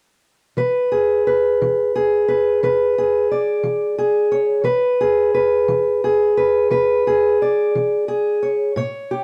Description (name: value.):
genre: blues.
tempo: 59 BPM (dotted quarters).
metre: 12/8.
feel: straight.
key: unclear.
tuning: A4 = 442 Hz.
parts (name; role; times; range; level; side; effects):
fingerpicked steel-string acoustic guitar; accompaniment; 0.6-9.2 s; A2 to D5; -18 LUFS; equal; none.
room: moderate studio reverb, RT60 0.6 s.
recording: dark, warm production.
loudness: -18 LUFS.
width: mono.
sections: 0.6-9.2 A section.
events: none.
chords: 0.6 E7; 8.7 A7.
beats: | 0.56 1.58 2.60 3.62 | 4.64 5.67 6.69 7.71 | 8.73.